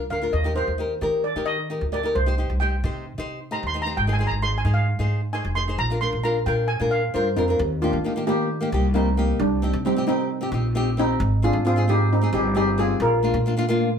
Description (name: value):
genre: calypso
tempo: 133 BPM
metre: 4/4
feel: straight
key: Eb major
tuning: A4 = 440 Hz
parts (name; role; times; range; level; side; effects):
- nylon-string guitar; accompaniment; 0.0-13.9 s; Bb3 to C5; -26 LUFS; left 2 dB; none
- upright bass; bass; 0.0-14.0 s; F1 to Eb3; -24 LUFS; equal; none
- steel pan; melody; 0.1-13.4 s; G3 to C6; -25 LUFS; right 1 dB; none
room: wet studio reverb, RT60 0.6 s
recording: heard from further back in the room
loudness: -20 LUFS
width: side -7 dB against mid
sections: 0.0-7.6 A section; 7.6-14.0 B section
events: steel pan solo 0.0-7.6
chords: 0.3 Eb; 2.2 Cm; 4.0 Ab6; 5.8 Bb; 7.6 Eb6; 9.4 Cm; 11.2 Abmaj7; 13.0 Bb